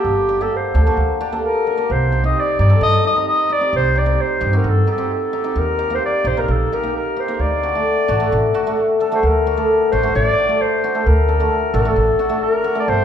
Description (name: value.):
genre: klezmer.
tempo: 131 BPM.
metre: 4/4.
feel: straight.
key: D phrygian dominant.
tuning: A4 = 440 Hz.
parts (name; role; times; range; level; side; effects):
mellow clarinet; melody; 0.0-13.0 s; G4 to Eb5; -19 LUFS; equal; none.
cimbalom; accompaniment; 0.0-12.9 s; A3 to Bb4; -20 LUFS; left 1 dB; none.
upright bass; bass; 0.0-13.0 s; G1 to G2; -19 LUFS; equal; none.
room: moderate recital hall reverb, RT60 1.3 s.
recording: recorded in a church or concert hall.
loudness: -15 LUFS.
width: side -8 dB against mid.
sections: 0.0-9.2 A section; 9.2-13.0 A section.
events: none.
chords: 0.0 Gm; 1.9 Cm; 5.6 Eb; 7.4 D.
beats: | 0.06 0.52 0.97 1.44 | 1.89 2.35 2.81 3.27 | 3.73 4.19 4.65 5.11 | 5.57 6.02 6.48 6.94 | 7.40 7.86 8.31 8.77 | 9.23 9.68 10.14 10.60 | 11.05 11.51 11.96 12.42 | 12.87.